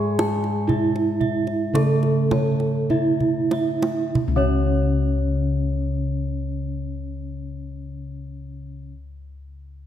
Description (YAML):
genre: Javanese gamelan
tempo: 45-62 BPM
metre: 4/4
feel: straight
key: unclear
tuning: A4 = 439 Hz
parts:
  - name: gamelan-type bronze metallophone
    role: melody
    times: 0.0-8.9 s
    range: C#4 to A4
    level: -25 LUFS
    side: right 2 dB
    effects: slapback echo
  - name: gamelan-type bronze metallophone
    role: accompaniment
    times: 0.0-8.9 s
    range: C#3 to A3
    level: -28 LUFS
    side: left 1 dB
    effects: none
  - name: gamelan-type bossed gongs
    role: arpeggios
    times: 0.0-8.9 s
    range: C#5 to A5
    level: -33 LUFS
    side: left 8 dB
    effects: none
  - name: gamelan-type bronze metallophone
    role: arpeggios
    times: 0.0-8.9 s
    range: C#5 to A5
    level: -33 LUFS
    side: right 3 dB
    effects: none
  - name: gamelan-type bossed gongs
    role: bass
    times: 0.0-8.8 s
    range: C#2 to G#4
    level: -25 LUFS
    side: left 1 dB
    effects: none
  - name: kendang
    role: percussion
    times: 0.2-4.8 s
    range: none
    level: -28 LUFS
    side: right 2 dB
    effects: none
room: moderate scoring stage reverb, RT60 2.2 s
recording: none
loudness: -19 LUFS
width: side -10 dB against mid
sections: 0.0-4.2 A section; 4.2-9.5 B section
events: slowing down 0.0-4.2; drum fill 2.9-4.2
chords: none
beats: 0.68 1.74 2.90 | 4.17 5.50 6.83 8.16